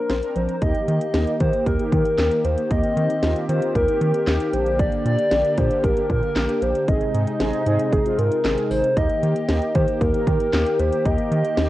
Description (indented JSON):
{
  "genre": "synth-pop",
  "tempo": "115 BPM",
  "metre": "4/4",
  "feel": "straight",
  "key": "Eb major",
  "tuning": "A4 = 443 Hz",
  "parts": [
    { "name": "hollow clarinet-like synth lead", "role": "melody", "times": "0.0-11.7 s", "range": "Ab4 to Eb5", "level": "-22 LUFS", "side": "equal", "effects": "chorus" },
    { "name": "mellow synth brass", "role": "accompaniment", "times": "0.0-11.7 s", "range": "Bb3 to Bb4", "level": "-27 LUFS", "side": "equal", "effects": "chorus" },
    { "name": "soft round pluck", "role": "arpeggios", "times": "0.1-0.5 s", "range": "F3 to C5", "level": "-30 LUFS", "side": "left 2 dB", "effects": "chorus, analog delay" },
    { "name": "rubbery square bass", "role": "bass", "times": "0.1-11.7 s", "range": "Ab1 to Eb3", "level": "-23 LUFS", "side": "equal", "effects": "none" },
    { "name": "house drum kit", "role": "drums", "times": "0.1-11.7 s", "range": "handclaps, hi-hat, kick drum, snare drum", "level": "-24 LUFS", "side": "equal", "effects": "cassette tape" },
    { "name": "brassy analog pad", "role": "sustained chords", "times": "0.6-11.7 s", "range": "C3 to G4", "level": "-27 LUFS", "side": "equal", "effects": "chorus" }
  ],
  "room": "light reverb",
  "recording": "home recording on cassette",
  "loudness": "-18 LUFS",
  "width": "side -15 dB against mid",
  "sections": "0.6-11.7 A section",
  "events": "none",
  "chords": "0.0 Bbadd9; 0.6 Eb; 4.5 Bb6; 6.9 Ab; 9.0 Eb",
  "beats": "0.10 | 0.62 1.14 1.66 2.18 | 2.71 3.23 3.75 4.27 | 4.79 5.32 5.84 6.36 | 6.88 7.40 7.92 8.45 | 8.97 9.49 10.01 10.53 | 11.05 11.58"
}